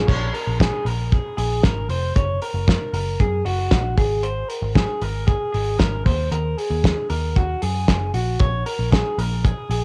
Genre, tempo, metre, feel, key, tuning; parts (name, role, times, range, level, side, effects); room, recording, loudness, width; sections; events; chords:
jangly indie pop; 115 BPM; 4/4; straight; Bb minor; A4 = 440 Hz
electric guitar through a small old amp; arpeggios; 0.0-9.8 s; Gb4 to Db5; -28 LUFS; equal; cassette tape, analog delay, plate reverb
vintage muted picked electric bass; bass; 0.0-9.8 s; F1 to Gb2; -26 LUFS; equal
cloth-damped thuddy drum kit; drums; 0.1-9.8 s; crash cymbal, hi-hat, kick drum, snare drum; -23 LUFS; equal; cassette tape
little or no reverb; home recording on cassette; -21 LUFS; mono
0.1-9.8 A section
0.1 Bbm7; 2.2 Gbadd9; 4.0 Ab; 6.1 Ebm; 8.4 Bbm7